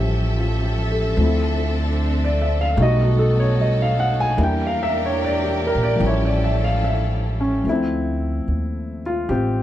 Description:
jazz ballad; 74 BPM; 4/4; swing 69% on 8ths; D minor; A4 = 439 Hz
warm grand piano; accompaniment; 0.0-9.6 s; F3 to G#5; -22 LUFS; left 1 dB
warm studio string section; sustained chords; 0.0-7.6 s; E3 to E5; -27 LUFS; right 1 dB
upright bass; bass; 0.0-9.6 s; A1 to E2; -21 LUFS; equal
light reverb; dark, warm production; -18 LUFS; side -12 dB against mid
0.0-7.6 A section; 7.6-9.6 B section
0.0 A7b13; 1.2 Dm9; 2.8 B7b13; 4.4 Em7b5; 6.0 A7b13; 7.6 Dm9
0.37 | 1.18 1.98 2.78 3.58 | 4.38 5.19 6.00 6.83 | 7.65 8.47 9.28

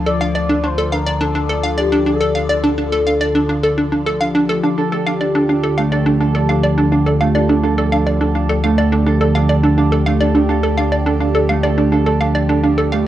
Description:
ambient, sequencer-driven space music; 105 BPM; 4/4; straight; D minor; A4 = 439 Hz
evolving wavetable pad; sustained chords; 0.0-13.1 s; D3 to D5; -20 LUFS; equal; chorus, built-in reverb, phaser, cassette tape
warm sub bass; bass; 0.0-13.1 s; D2; -22 LUFS; equal
expressive portamento lead; melody; 0.1-4.0 s; G4 to D5; -21 LUFS; left 4 dB; lush chorus, cassette tape, shimmer reverb, analog delay
hollow square pluck; riff; 0.1-13.0 s; D4 to F5; -17 LUFS; right 1 dB; chorus, cassette tape, shimmer reverb, analog delay
Celtic harp; arpeggios; 4.6-13.1 s; A3 to A4; -19 LUFS; right 4 dB; auto-pan, cassette tape, shimmer reverb, analog delay
wet studio ambience, RT60 0.5 s; home recording on cassette; -13 LUFS; side -12 dB against mid
0.0-13.1 A section
0.0 Dm
| 0.06 0.64 1.21 1.78 | 2.35 2.92 3.49 4.06 | 4.64 5.21 5.78 6.35 | 6.92 7.49 8.06 8.64 | 9.21 9.78 10.35 10.92 | 11.49 12.06 12.64

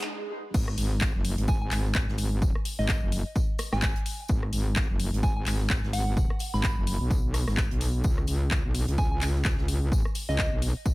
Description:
bass house; 128 BPM; 4/4; swing 58% on 16ths; A4 = 440 Hz
house drum kit; drums; 0.0-10.7 s; crash cymbal, handclaps, hi-hat, rim click, snare drum; -33 LUFS; left 1 dB; high-pass filter on snare, high-pass filter on hats, high-pass filter on cymbals
riser and swell; sound effects; 0.0-0.5 s; -37 LUFS; right 1 dB
metallic wobble bass; bass; 0.5-10.7 s; F#1 to C#2; -27 LUFS; equal; chorus, tube saturation, sidechain pumping
electronic kick drum; drums; 0.5-10.9 s; -27 LUFS; equal; high-pass filter on kick
open jazz drum kit; drums; 0.5-10.9 s; hi-hat, snare drum, tambourine; -44 LUFS; left 1 dB; high-pass filter on hats, high-pass filter on snare, high-pass filter on perc, high-pass filter on room
soft synth bell; melody; 1.5-10.5 s; D#5 to B5; -37 LUFS; right 1 dB; chorus, digital delay
small room reverb; high-pass filter; -24 LUFS; side -20 dB against mid
0.5-10.9 A section
swell 0.0-0.5; break 0.1-0.5; drop 0.5-10.9
0.0 N.C.; 8.0 Bsus2
0.07 | 0.54 1.01 1.48 1.95 | 2.42 2.89 3.36 3.82 | 4.29 4.76 5.23 5.70 | 6.17 6.64 7.11 7.57 | 8.04 8.51 8.98 9.45 | 9.92 10.39 10.86

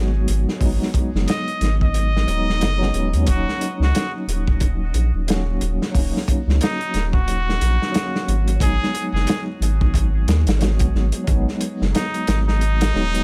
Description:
trip hop; 90 BPM; 4/4; swing 58% on 16ths; A4 = 441 Hz
tine electric piano; accompaniment; 0.0-13.2 s; Gb3 to Gb4; -29 LUFS; equal; tremolo, low-pass filter, tape echo
round analog bass; bass; 0.0-13.2 s; Eb1 to Eb2; -22 LUFS; equal
crunchy breakbeat drum kit; drums; 0.3-13.2 s; hi-hat, kick drum, snare drum; -24 LUFS; equal
trumpet with straight mute; melody; 1.3-13.2 s; Eb4 to Eb5; -30 LUFS; equal; dub echo
studio reverb; echo-heavy mix; -20 LUFS; mono
0.0-13.2 A section
0.0 Abm7; 3.3 Ebm7; 8.6 Abm7
| 0.61 1.28 1.95 2.61 | 3.28 3.94 4.61 5.28 | 5.95 6.61 7.28 7.95 | 8.61 9.28 9.95 10.61 | 11.28 11.95 12.61

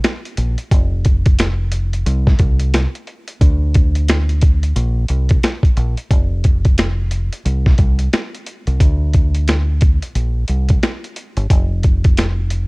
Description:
hip hop, boom-bap hip-hop; 89 BPM; 4/4; swing 61% on 16ths; A4 = 440 Hz
boom bap sampler-style drum kit; drums; 0.0-12.7 s; hi-hat, kick drum, snare drum; -14 LUFS; equal; cassette tape
deep dub fingered electric bass; bass; 0.4-12.7 s; F1 to D2; -16 LUFS; equal
little or no reverb; home recording on cassette; -13 LUFS; side -28 dB against mid
0.0-6.1 A section; 6.1-12.7 B section
0.04 | 0.71 1.39 2.06 2.74 | 3.41 4.09 4.76 5.43 | 6.11 6.78 7.46 8.13 | 8.80 9.48 10.15 10.83 | 11.50 12.18

